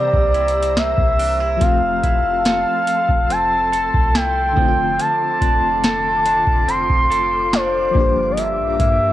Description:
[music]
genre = contemporary R&B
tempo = 71 BPM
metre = 4/4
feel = straight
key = D minor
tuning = A4 = 442 Hz
[part]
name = gliding portamento lead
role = melody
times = 0.0-9.1 s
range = C5 to C6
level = -17 LUFS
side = equal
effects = chorus, cassette tape
[part]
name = FM electric piano with tremolo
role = accompaniment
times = 0.0-9.1 s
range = D3 to G4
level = -27 LUFS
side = left 8 dB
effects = cassette tape
[part]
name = glassy FM pad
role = sustained chords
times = 0.0-9.1 s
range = F4 to E6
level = -28 LUFS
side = left 2 dB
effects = ensemble chorus, built-in reverb, cassette tape
[part]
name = direct-recorded clean electric guitar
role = arpeggios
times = 0.0-9.1 s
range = G2 to A4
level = -30 LUFS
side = right 9 dB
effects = cassette tape
[part]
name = clean 808-style bass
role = bass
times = 0.0-9.1 s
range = F1 to C3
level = -26 LUFS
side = equal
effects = none
[part]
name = booming analog drum machine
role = drums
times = 0.1-9.0 s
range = hi-hat, kick drum, snare drum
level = -18 LUFS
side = equal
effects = none
[sound]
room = light reverb, digital ambience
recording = home recording on cassette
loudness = -15 LUFS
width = side -14 dB against mid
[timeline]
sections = 0.0-9.1 A section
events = none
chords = 0.0 C7; 1.6 Fmaj7; 4.6 Dm7/F; 8.0 Gm7

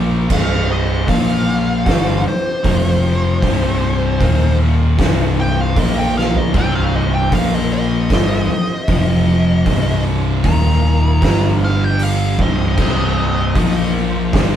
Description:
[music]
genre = stoner and doom metal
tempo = 77 BPM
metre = 4/4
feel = straight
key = C minor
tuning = A4 = 442 Hz
[part]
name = tonewheel organ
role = sustained chords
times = 0.0-14.6 s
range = C3 to F5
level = -30 LUFS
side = right 1 dB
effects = none
[part]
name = biting overdriven guitar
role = riff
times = 0.0-14.6 s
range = C2 to Bb3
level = -25 LUFS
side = equal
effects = none
[part]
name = thick fuzz guitar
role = riff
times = 0.0-14.6 s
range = C2 to Bb3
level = -20 LUFS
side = left 5 dB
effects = distortion
[part]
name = thick fuzz guitar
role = riff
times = 0.0-14.6 s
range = C2 to Bb3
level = -22 LUFS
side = right 4 dB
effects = distortion
[part]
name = overdriven picked electric bass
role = bass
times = 0.0-14.6 s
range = C1 to Bb1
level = -19 LUFS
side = equal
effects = none
[part]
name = fuzz lead guitar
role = melody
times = 0.3-13.9 s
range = C5 to Bb5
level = -23 LUFS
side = equal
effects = wah, distortion
[part]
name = oversized low-tuned drum kit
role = drums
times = 0.3-14.5 s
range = crash cymbal, hi-hat, kick drum, snare drum, toms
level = -19 LUFS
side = equal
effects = none
[sound]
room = light reverb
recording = band playing live in one room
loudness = -13 LUFS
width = side -10 dB against mid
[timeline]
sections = 0.0-14.6 A section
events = lead electric guitar solo 0.0-14.6; drum fill 6.2-6.5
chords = 0.3 Cm; 1.1 Bb5; 1.9 C5; 2.6 F5; 3.4 C5; 4.2 Eb5; 5.0 C5; 5.8 Bb5; 6.5 C5; 7.3 Bb5; 8.1 Cm; 8.9 F5; 9.7 Cm; 10.4 Eb5; 11.2 G5; 12.4 Cm; 13.6 Bb5

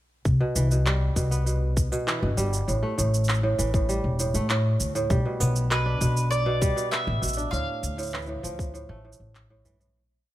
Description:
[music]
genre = folktronica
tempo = 99 BPM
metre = 4/4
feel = straight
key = C major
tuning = A4 = 439 Hz
[part]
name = upright bass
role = bass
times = 0.3-9.9 s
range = E1 to A2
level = -25 LUFS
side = equal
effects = tube saturation
[part]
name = electronic kick drum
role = drums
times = 0.3-8.7 s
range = none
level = -25 LUFS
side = equal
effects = small room ambience
[part]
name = electronic shaker and handclaps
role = drums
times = 0.3-9.9 s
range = none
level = -31 LUFS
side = right 1 dB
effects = small room ambience
[part]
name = kora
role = arpeggios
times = 0.4-10.3 s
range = A2 to D4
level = -29 LUFS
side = right 1 dB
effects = tape echo
[part]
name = mandolin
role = melody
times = 5.7-9.6 s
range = B4 to F5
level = -29 LUFS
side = equal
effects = tape echo
[sound]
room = small room ambience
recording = faint mains hum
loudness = -22 LUFS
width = side -14 dB against mid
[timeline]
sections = 0.3-10.0 groove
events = fade-out 6.7-10.0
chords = 0.3 Cmaj7; 2.7 A5; 5.1 G/B; 7.5 Dmadd9

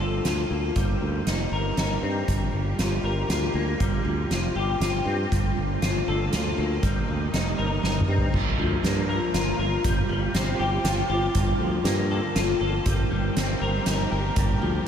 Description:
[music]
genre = post-rock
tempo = 119 BPM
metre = 3/4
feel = straight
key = G minor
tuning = A4 = 441 Hz
[part]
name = dark symphonic string section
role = sustained chords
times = 0.0-14.9 s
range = C3 to G4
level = -32 LUFS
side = right 2 dB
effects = stereo widening
[part]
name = clean electric guitar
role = arpeggios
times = 0.0-14.9 s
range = G2 to Bb4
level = -27 LUFS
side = left 2 dB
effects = ensemble chorus, tape echo
[part]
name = modern bright fingered electric bass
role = bass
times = 0.0-14.8 s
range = F1 to G2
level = -27 LUFS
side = equal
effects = none
[part]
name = soft-mallet drum kit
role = drums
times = 0.2-14.5 s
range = crash cymbal, hi-hat, kick drum, snare drum, toms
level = -27 LUFS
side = right 1 dB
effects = none
[sound]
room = moderate huge ambient reverb, RT60 8.0 s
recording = dreamy mix soaked in reverb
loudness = -22 LUFS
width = side -8 dB against mid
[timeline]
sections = 0.0-8.3 A section; 8.3-14.9 B section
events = drum fill 7.8-8.3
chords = 0.0 Bbmaj7/G; 0.8 Cm7; 2.3 Gm7; 3.8 Fsus2; 5.3 Bbmaj7/G; 6.8 Cm7; 8.3 Gm7; 9.9 Fsus2/G; 11.4 Bbmaj7/G; 12.9 Cm7/G; 14.4 Gm7

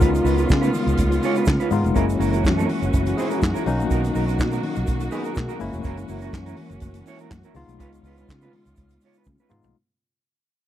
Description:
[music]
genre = disco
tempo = 123 BPM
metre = 4/4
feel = straight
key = unclear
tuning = A4 = 439 Hz
[part]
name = mellow electric guitar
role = accompaniment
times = 0.0-9.7 s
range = B3 to C#5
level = -28 LUFS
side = right 7 dB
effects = vibrato effect
[part]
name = tine electric piano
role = accompaniment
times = 0.0-9.8 s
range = F#3 to A#4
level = -25 LUFS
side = left 6 dB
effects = medium stereo tremolo
[part]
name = warm studio string section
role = sustained chords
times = 0.0-9.7 s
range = B2 to F#4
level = -27 LUFS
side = right 2 dB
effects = none
[part]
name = vintage muted fingered electric bass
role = bass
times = 0.0-9.7 s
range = E1 to C#3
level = -24 LUFS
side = right 1 dB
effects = none
[part]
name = vintage drum kit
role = drums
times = 0.0-9.7 s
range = handclaps, hi-hat, kick drum, snare drum, toms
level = -23 LUFS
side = equal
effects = none
[part]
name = congas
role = percussion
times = 0.0-9.7 s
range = none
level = -33 LUFS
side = left 4 dB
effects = none
[part]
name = egg shaker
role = percussion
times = 0.0-9.7 s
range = none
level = -46 LUFS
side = right 15 dB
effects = none
[sound]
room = little or no reverb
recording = dry, close 1970s-style studio recording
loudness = -19 LUFS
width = side -12 dB against mid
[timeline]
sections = 0.0-9.7 A section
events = fade-out 0.0-9.7; drum fill 9.3-9.7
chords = 0.0 C#7; 2.0 F#7; 3.7 Bmaj7; 5.6 F#7; 7.6 C#7

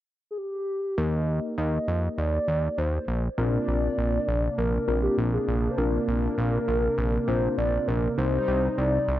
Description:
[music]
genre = synth-pop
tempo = 100 BPM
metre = 4/4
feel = straight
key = unclear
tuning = A4 = 439 Hz
[part]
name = hollow clarinet-like synth lead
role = melody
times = 0.3-9.2 s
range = G4 to Eb5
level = -28 LUFS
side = equal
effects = chorus, low-pass filter, dub echo
[part]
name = mellow tine electric piano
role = accompaniment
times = 1.0-9.0 s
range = Bb3 to C5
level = -31 LUFS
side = left 2 dB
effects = medium stereo tremolo, dub echo
[part]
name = fat analog bass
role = bass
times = 1.0-9.2 s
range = Bb1 to F2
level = -26 LUFS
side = equal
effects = none
[part]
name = brassy analog pad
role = sustained chords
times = 3.4-9.2 s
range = C3 to Eb4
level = -31 LUFS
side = right 2 dB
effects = chorus
[sound]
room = light reverb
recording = echo-heavy mix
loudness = -23 LUFS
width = side -13 dB against mid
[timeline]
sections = 1.0-3.4 A section; 3.4-9.2 B section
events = filter sweep on soft synth lead 1.0-3.4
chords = 0.0 N.C.; 1.0 Eb; 3.1 Bbsus2; 3.4 Bbadd9; 8.2 Cm

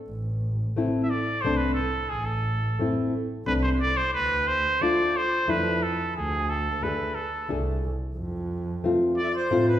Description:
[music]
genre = klezmer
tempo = 89 BPM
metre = 3/4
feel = straight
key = A harmonic minor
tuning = A4 = 440 Hz
[part]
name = dark double bass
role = bass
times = 0.1-9.8 s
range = A1 to A2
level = -30 LUFS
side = right 1 dB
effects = none
[part]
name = nylon-string guitar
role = accompaniment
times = 0.8-9.8 s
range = A3 to G#4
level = -26 LUFS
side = left 2 dB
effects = none
[part]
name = cornet with straight mute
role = melody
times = 1.0-9.8 s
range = G#4 to E5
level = -26 LUFS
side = right 1 dB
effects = none
[part]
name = accordion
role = second line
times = 9.2-9.8 s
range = B4 to E5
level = -31 LUFS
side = right 2 dB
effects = none
[sound]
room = wet recital hall reverb, RT60 1.4 s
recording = recorded in a church or concert hall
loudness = -23 LUFS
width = side -11 dB against mid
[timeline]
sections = 0.1-9.8 A section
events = cornet solo 0.1-9.8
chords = 0.1 Am; 4.1 Dm; 8.2 F

